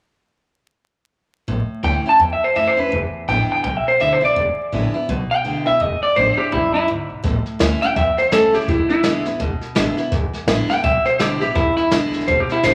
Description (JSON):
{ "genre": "rockabilly", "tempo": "167 BPM", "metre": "4/4", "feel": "swing 60% on 8ths", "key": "A major", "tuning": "A4 = 442 Hz", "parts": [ { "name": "picked steel-string acoustic guitar", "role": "accompaniment", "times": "1.5-12.7 s", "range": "E2 to E4", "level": "-27 LUFS", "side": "equal", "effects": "none" }, { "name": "upright bass", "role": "bass", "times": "1.5-12.7 s", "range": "E1 to F#2", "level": "-27 LUFS", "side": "equal", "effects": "none" }, { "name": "electric guitar through a small old amp", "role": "melody", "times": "1.8-12.7 s", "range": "E4 to A5", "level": "-19 LUFS", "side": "equal", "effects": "spring reverb" }, { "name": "jazz brush drum kit", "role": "drums", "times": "7.2-12.7 s", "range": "hi-hat, kick drum, snare drum", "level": "-24 LUFS", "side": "equal", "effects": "none" } ], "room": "light reverb", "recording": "vinyl crackle", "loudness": "-18 LUFS", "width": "mono", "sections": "1.5-7.2 A section; 7.2-12.7 B section", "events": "none", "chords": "1.5 A; 2.9 E7; 7.2 A; 8.7 E7" }